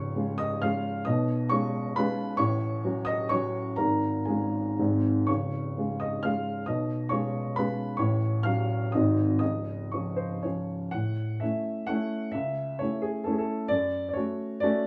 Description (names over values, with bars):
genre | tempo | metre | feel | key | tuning
classical, romantic triple-time dance for piano with dotted rhythms | 111-149 BPM | 3/4 | rubato | Db major, A major from 10.9 s | A4 = 440 Hz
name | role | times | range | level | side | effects
warm baby grand piano | solo | 0.0-14.9 s | Db1 to F6 | -28 LUFS | equal | none
room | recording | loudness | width
light reverb | small room ambience | -28 LUFS | mono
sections
0.0-10.9 A section; 10.9-14.9 B section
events
none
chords
0.0 Db; 1.1 Db7/Cb; 2.4 Gbm/A; 3.8 Db/Ab; 4.8 Ab; 5.3 Db; 6.7 Db7/Cb; 8.0 Gbm/A; 8.9 Ab7; 9.4 Db; 10.9 A; 12.3 A/C#; 13.7 F#m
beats
0.15 0.63 | 1.07 1.51 1.97 | 2.38 2.83 3.30 | 3.78 4.27 4.79 | 5.29 5.77 6.24 | 6.67 7.11 7.57 | 7.99 8.45 8.93 | 9.41 9.93 10.45 | 10.94 11.41 11.88 | 12.34 12.80 13.26 | 13.71 14.15 14.63